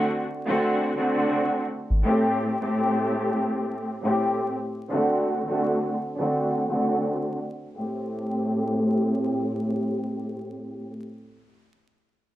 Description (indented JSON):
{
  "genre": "hip hop, boom-bap hip-hop",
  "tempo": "84 BPM",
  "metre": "4/4",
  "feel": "swing 58% on 16ths",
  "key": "A dorian",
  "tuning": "A4 = 440 Hz",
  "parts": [
    { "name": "bright studio string section", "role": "accompaniment", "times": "0.0-10.9 s", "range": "A2 to G4", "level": "-23 LUFS", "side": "equal", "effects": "cassette tape, high-pass filter, low-pass filter" },
    { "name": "round analog bass", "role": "bass", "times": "1.9-2.0 s", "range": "G#1", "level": "-21 LUFS", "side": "equal", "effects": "none" }
  ],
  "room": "moderate small room ambience, RT60 0.5 s",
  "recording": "vinyl crackle",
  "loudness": "-23 LUFS",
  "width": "side -14 dB against mid",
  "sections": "0.0-7.8 A section; 7.8-10.6 B section",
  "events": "filter sweep on string section 0.0-7.8",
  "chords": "0.0 D7; 2.1 Am7; 4.9 D7; 7.8 Am7",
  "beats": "0.62 1.34 | 2.05 2.77 3.48 4.20 | 4.91 5.62 6.34 7.05 | 7.77 8.48 9.20 9.91"
}